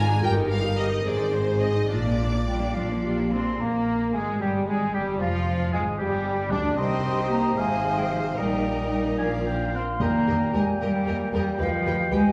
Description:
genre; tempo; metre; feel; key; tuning
quick classical-period movement for symphony orchestra; 69-77 BPM (dotted quarters); 6/8; rubato; unclear; A4 = 440 Hz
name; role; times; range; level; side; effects
rich studio violin section; melody; 0.0-12.2 s; G3 to G5; -40 LUFS; equal; none
rich chamber violin section; second line; 0.0-12.2 s; G3 to Ab5; -37 LUFS; equal; none
rich chamber viola section; accompaniment; 0.0-12.2 s; F3 to C5; -35 LUFS; equal; none
mellow French horn section; sustained chords; 0.0-12.2 s; F3 to C5; -34 LUFS; equal; none
clear studio double bass section; bass; 0.0-12.2 s; F1 to Eb2; -32 LUFS; equal; none
rich chamber cello section; bass; 0.0-12.3 s; G2 to D4; -30 LUFS; equal; none
silver concert flute; second line; 2.5-12.3 s; F5 to D6; -34 LUFS; equal; none
warm oboe; second line; 3.6-12.3 s; Bb3 to Ab5; -36 LUFS; equal; none
clear bassoon; accompaniment; 3.6-12.3 s; Bb2 to D4; -34 LUFS; equal; none
timpani; percussion; 10.0-10.8 s; Eb3; -34 LUFS; equal; none
room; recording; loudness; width
wet recital hall reverb, RT60 1.8 s; heard from further back in the room; -25 LUFS; mono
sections
0.0-3.6 A section; 3.6-12.3 B section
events
none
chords
0.2 Eb/G; 1.0 Ab; 1.9 Bb; 3.6 Gm; 5.2 G5/F; 6.8 Cm; 7.6 Ab; 8.4 Eb/Bb; 9.2 Bb; 10.0 Eb; 11.6 G7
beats
| 0.24 1.05 | 1.90 2.75 | 3.60 4.41 | 5.20 6.00 | 6.78 7.58 | 8.38 9.20 | 10.01 10.82 | 11.61

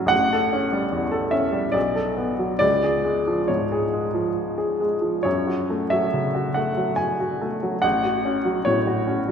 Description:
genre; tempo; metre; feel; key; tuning
classical, romantic character piece for solo piano; 70 BPM; 3/4; uneven beats, rubato; F# minor; A4 = 440 Hz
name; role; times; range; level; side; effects
clear upright piano; solo; 0.0-9.3 s; A1 to G#5; -20 LUFS; equal; none
room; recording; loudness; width
wet concert hall reverb, RT60 2.2 s; minimal, uncompressed stereo recording; -20 LUFS; side -7 dB against mid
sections
0.0-9.3 A section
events
none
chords
0.1 A7; 1.8 Bm7; 2.6 C#; 5.3 F#m; 7.8 F#m/A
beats
| 0.11 0.92 1.75 | 2.62 3.50 4.37 | 5.26 6.14 7.00 | 7.84 8.66

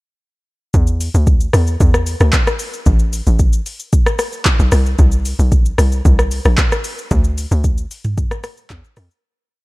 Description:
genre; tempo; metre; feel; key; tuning
amapiano; 113 BPM; 4/4; straight; unclear; A4 = 440 Hz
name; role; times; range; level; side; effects
tight log drum bass; bass; 0.7-9.1 s; A1 to F2; -14 LUFS; equal; none
afro-pop drum kit; drums; 0.7-9.2 s; handclaps, hi-hat, kick drum, rim click, shaker, toms; -15 LUFS; equal; none
room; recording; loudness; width
little or no reverb; dark, warm production; -13 LUFS; side -22 dB against mid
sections
0.7-9.2 drop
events
drop 0.7-9.2; fade-out 7.1-9.2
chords
none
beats
| 0.74 1.27 1.80 2.33 | 2.86 3.40 3.93 4.46 | 4.99 5.52 6.05 6.58 | 7.11 7.64 8.17 8.71

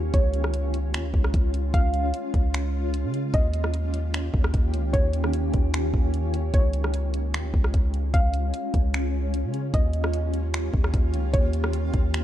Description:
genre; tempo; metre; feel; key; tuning
hip hop, atmospheric cloud-rap; 150 BPM; 4/4; half-time; Db lydian; A4 = 440 Hz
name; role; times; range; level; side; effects
soft round pluck; melody; 0.0-12.2 s; Db5 to F5; -33 LUFS; right 1 dB; chorus, tape echo
shimmering ambient pad; sustained chords; 0.0-12.2 s; Eb3 to G4; -30 LUFS; equal; chorus, built-in reverb, tremolo, sidechain pumping
warm 808-style bass; bass; 0.0-12.2 s; Db2 to Db3; -25 LUFS; equal; none
smooth R&B drum kit; drums; 0.1-12.2 s; finger snaps, hi-hat, kick drum, rim click; -24 LUFS; equal; vintage 12-bit sampler grit
room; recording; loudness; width
digital ambience; dark, warm production; -22 LUFS; side -12 dB against mid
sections
0.0-6.5 A section; 6.5-12.2 A section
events
none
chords
0.1 Db; 3.3 Eb7; 6.5 Db; 9.7 Eb7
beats
| 0.14 0.54 0.94 1.34 | 1.74 2.14 2.54 2.94 | 3.34 3.74 4.14 4.54 | 4.94 5.34 5.74 6.14 | 6.54 6.94 7.34 7.74 | 8.14 8.54 8.94 9.34 | 9.74 10.14 10.54 10.94 | 11.34 11.74 12.14

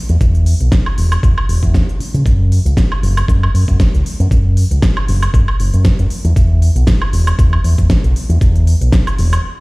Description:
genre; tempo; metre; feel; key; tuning
nu-disco, nu disco; 117 BPM; 4/4; swing 54% on 16ths; unclear; A4 = 439 Hz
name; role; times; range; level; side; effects
fingered electric bass with an envelope filter; bass; 0.1-9.4 s; E1 to C#3; -12 LUFS; equal; none
pop drum kit; drums; 0.1-9.4 s; hi-hat, snare drum, woodblock; -21 LUFS; equal; small room reverb
electronic kick drum; drums; 0.2-9.0 s; none; -13 LUFS; equal; small room reverb
room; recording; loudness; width
little or no reverb; played on a big sound system in a bare room, stone room reverb; -11 LUFS; side -24 dB against mid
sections
0.0-9.6 A section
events
stop 9.4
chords
none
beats
| 0.21 0.72 1.24 1.75 | 2.26 2.77 3.29 3.80 | 4.31 4.83 5.34 5.85 | 6.36 6.88 7.39 7.90 | 8.42 8.93

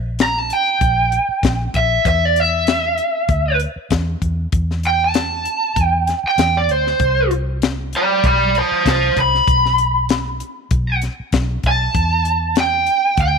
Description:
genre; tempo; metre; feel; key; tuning
straight-eighth soul blues; 97 BPM; 4/4; swing 54% on 16ths; unclear; A4 = 440 Hz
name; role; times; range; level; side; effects
vintage muted fingered electric bass; bass; 0.0-13.4 s; Bb1 to E2; -21 LUFS; equal; none
lead guitar through a small cranked amp; melody; 0.2-13.4 s; C5 to B5; -16 LUFS; right 2 dB; overdrive
tight funk drum kit; drums; 0.2-13.3 s; hi-hat, kick drum, snare drum; -20 LUFS; left 3 dB; none
room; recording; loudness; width
light reverb, studio reverb; 1960s-style stereo; -15 LUFS; side -5 dB against mid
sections
0.0-13.4 A section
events
lead electric guitar solo 0.0-13.4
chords
0.0 Gm/Bb; 2.1 Dsus2 (rootless); 7.0 Amadd9; 9.5 N.C.; 11.9 Em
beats
0.20 0.81 1.43 | 2.05 2.67 3.29 3.91 | 4.53 5.14 5.76 6.38 | 7.00 7.62 8.24 8.86 | 9.47 10.09 10.71 11.33 | 11.95 12.56 13.18

